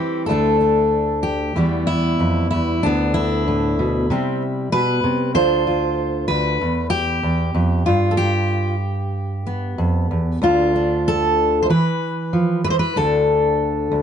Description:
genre	folk, solo fingerstyle acoustic guitar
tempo	95 BPM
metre	4/4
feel	straight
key	unclear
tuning	A4 = 440 Hz
part	fingerpicked steel-string acoustic guitar	solo	0.0-14.0 s	D2 to C5	-17 LUFS	equal	none
room	light reverb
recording	nothing above 10.5 kHz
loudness	-17 LUFS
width	side -8 dB against mid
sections	0.3-14.0 A section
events	none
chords	0.3 D5; 1.6 Em; 2.8 Bmadd11/D; 4.1 C; 5.3 Dm; 6.6 Em; 7.9 G; 10.4 N.C.; 11.7 E5; 13.0 N.C.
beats	| 0.28 0.92 1.56 2.19 | 2.83 3.46 4.09 4.72 | 5.34 5.97 6.60 7.22 | 7.86 8.49 9.13 9.78 | 10.42 11.06 11.70 12.33 | 12.96 13.59

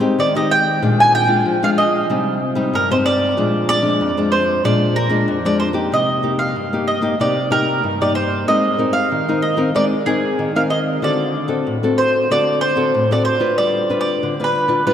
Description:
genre	samba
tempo	94 BPM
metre	4/4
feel	straight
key	C minor from 5.9 s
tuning	A4 = 440 Hz
part	nylon-string guitar	accompaniment	0.0-14.9 s	F2 to B4	-18 LUFS	left 2 dB	none
part	mandolin	melody	0.2-14.9 s	Ab4 to Ab5	-18 LUFS	right 2 dB	none
room	wet cathedral reverb, RT60 4.6 s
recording	in a vast, echoing space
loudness	-15 LUFS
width	side -9 dB against mid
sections	0.0-5.9 A section; 5.9-14.9 B section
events	none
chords	0.0 Abmaj7; 0.8 Bb7; 2.1 Cm; 3.4 Bb7; 5.9 Cm7; 8.5 Abadd9; 11.0 D7; 13.6 G7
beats	0.19 | 0.83 1.46 2.10 2.74 | 3.37 4.01 4.65 5.29 | 5.92 6.56 7.20 7.83 | 8.47 9.11 9.75 10.39 | 11.03 11.67 12.31 12.95 | 13.59 14.22 14.87

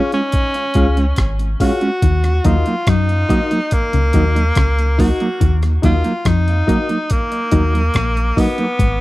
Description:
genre	roots reggae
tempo	71 BPM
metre	4/4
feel	straight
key	Eb minor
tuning	A4 = 440 Hz
part	breathy tenor saxophone	melody	0.0-9.0 s	Bb3 to Gb4	-20 LUFS	equal	tape echo
part	reed electric piano	stabs	0.0-8.6 s	Eb4 to F5	-22 LUFS	left 4 dB	fast tremolo
part	mellow electric guitar	accompaniment	0.1-8.7 s	Gb3 to F4	-21 LUFS	right 2 dB	tape echo
part	breakbeat sampler-style drum kit	drums	0.1-9.0 s	hi-hat, kick drum, rim click	-18 LUFS	equal	none
part	soft dub sub bass	bass	0.8-9.0 s	Ab1 to Gb2	-16 LUFS	equal	none
part	mellow electric guitar	riff	2.0-9.0 s	Ab2 to Gb3	-22 LUFS	left 6 dB	none
room	digital ambience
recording	dry, close 1970s-style studio recording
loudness	-14 LUFS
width	side -18 dB against mid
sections	0.0-9.0 A section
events	none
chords	0.0 Db; 2.0 Ebm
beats	0.34 1.18 | 2.03 2.87 3.72 4.56 | 5.41 6.25 7.10 7.95 | 8.79

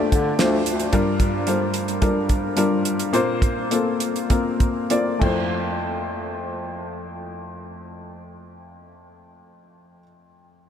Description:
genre	piano-driven pop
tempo	94-111 BPM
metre	4/4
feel	straight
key	F major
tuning	A4 = 440 Hz
part	warm upright piano	accompaniment	0.0-10.7 s	F2 to D5	-22 LUFS	left 2 dB	none
part	clear bass clarinet	bass	0.0-0.9 s	D2 to D3	-25 LUFS	right 1 dB	none
part	damped 70s drum kit	drums	0.1-5.4 s	crash cymbal, hi-hat, kick drum, snare drum	-23 LUFS	right 1 dB	none
room	moderate huge ambient reverb, RT60 6.3 s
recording	dreamy mix soaked in reverb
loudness	-19 LUFS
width	side -8 dB against mid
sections	0.0-5.5 A section; 5.5-10.6 B section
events	slowing down 0.9-5.5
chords	0.0 Dm7; 0.9 Gm7; 3.1 Bbsus2; 5.2 Fmaj7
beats	0.39 | 0.93 1.47 2.02 2.57 | 3.13 3.71 4.30 4.91 | 5.53 6.17 6.80 7.44 | 8.07 8.71 9.35 9.98

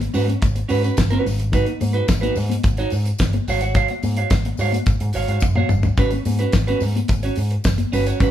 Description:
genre	disco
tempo	108 BPM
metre	4/4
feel	straight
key	unclear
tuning	A4 = 441 Hz
part	clean electric guitar	accompaniment	0.0-8.3 s	C#4 to F#5	-24 LUFS	right 4 dB	none
part	picked electric bass with an envelope filter	bass	0.0-8.3 s	F#1 to G#2	-21 LUFS	equal	none
part	damped 70s drum kit	drums	0.0-8.3 s	hi-hat, kick drum, snare drum, toms	-21 LUFS	equal	none
part	congas	percussion	0.0-8.3 s	none	-29 LUFS	left 7 dB	none
part	tambourine	percussion	0.1-8.3 s	none	-40 LUFS	left 5 dB	none
room	light reverb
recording	band playing live in one room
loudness	-17 LUFS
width	side -11 dB against mid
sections	0.0-8.3 A section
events	drum fill 5.4-6.0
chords	0.0 G#m7; 1.3 C#9sus4/G# (rootless); 3.5 C#add11; 6.0 G#m7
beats	0.42 0.98 | 1.53 2.09 2.64 3.20 | 3.75 4.31 4.86 5.42 | 5.97 6.53 7.09 7.64 | 8.20

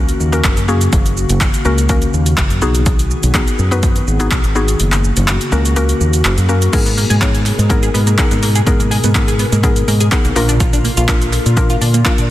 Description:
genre	dance-pop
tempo	124 BPM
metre	4/4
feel	straight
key	unclear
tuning	A4 = 441 Hz
part	mallet-like synth pluck	accompaniment	0.0-12.3 s	A#3 to C#5	-20 LUFS	left 2 dB	chorus, sidechain pumping
part	glassy FM pad	sustained chords	0.0-12.3 s	B2 to A#4	-23 LUFS	left 1 dB	ensemble chorus, built-in reverb, sidechain pumping
part	fingered electric bass	bass	0.0-12.3 s	F#1 to A#2	-15 LUFS	equal	sidechain pumping
part	punchy analog drum machine	drums	0.1-12.3 s	crash cymbal, handclaps, hi-hat, kick drum, shaker	-16 LUFS	equal	overdrive
part	tight sequenced synth	arpeggios	6.7-12.2 s	A#3 to G#4	-22 LUFS	right 1 dB	chorus, sidechain pumping, tape echo
part	group handclap	percussion	7.2-12.2 s	none	barely audible	none	none
room	light reverb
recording	dense, heavily limited modern master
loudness	-11 LUFS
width	side -14 dB against mid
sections	0.0-6.7 A section; 6.7-12.3 B section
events	kick muted 4.8-6.7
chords	0.0 F#; 2.6 B6; 4.8 F#; 6.7 G#madd9; 10.4 A#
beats	0.44 | 0.93 1.41 1.89 2.38 | 2.86 3.35 3.83 4.31 | 4.80 5.28 5.76 6.25 | 6.73 7.22 7.70 8.18 | 8.67 9.15 9.64 10.12 | 10.60 11.09 11.57 12.05

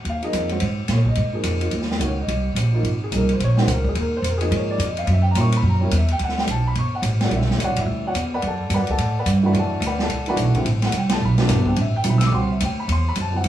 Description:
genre	modal jazz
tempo	215 BPM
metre	4/4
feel	swing 61% on 8ths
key	Eb dorian, B phrygian from 6.2 s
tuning	A4 = 438 Hz
part	upright bass	bass	0.0-13.5 s	G1 to Bb2	-20 LUFS	right 1 dB	none
part	warm grand piano	accompaniment	0.1-13.5 s	C3 to E6	-24 LUFS	right 1 dB	plate reverb
part	swinging big-band drum kit	drums	0.1-13.5 s	hi-hat, kick drum, ride cymbal, snare drum	-27 LUFS	left 1 dB	none
room	moderate small room reverb, RT60 0.5 s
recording	rough home demo mix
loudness	-18 LUFS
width	side -12 dB against mid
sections	0.0-6.2 A section; 6.2-13.5 A section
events	none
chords	0.0 Eb9sus4; 5.1 Gb7b9; 6.2 Bm9; 10.7 Am9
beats	0.04 0.33 | 0.60 0.89 1.17 1.45 | 1.73 2.01 2.29 2.56 | 2.85 3.12 3.40 3.68 | 3.96 4.24 4.52 4.80 | 5.08 5.36 5.64 5.92 | 6.20 6.47 6.75 7.03 | 7.31 7.59 7.87 8.15 | 8.43 8.71 8.99 9.26 | 9.54 9.82 10.10 10.38 | 10.66 10.94 11.21 11.49 | 11.77 12.05 12.33 12.61 | 12.89 13.16 13.44

